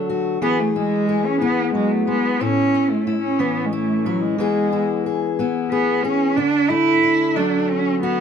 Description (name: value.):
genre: acoustic folk duo or small band.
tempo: 90 BPM.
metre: 3/4.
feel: straight.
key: unclear.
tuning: A4 = 439 Hz.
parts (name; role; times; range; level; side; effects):
fingerpicked steel-string acoustic guitar; accompaniment; 0.0-8.2 s; A2 to G#4; -21 LUFS; left 5 dB; none.
warm cello; melody; 0.4-8.2 s; F#3 to E4; -19 LUFS; right 3 dB; none.
room: light reverb.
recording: close, detailed microphones.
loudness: -17 LUFS.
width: side -7 dB against mid.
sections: 0.0-8.2 A section.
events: cello solo 0.0-8.2.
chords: 0.4 E; 2.4 A; 4.4 E; 6.4 D.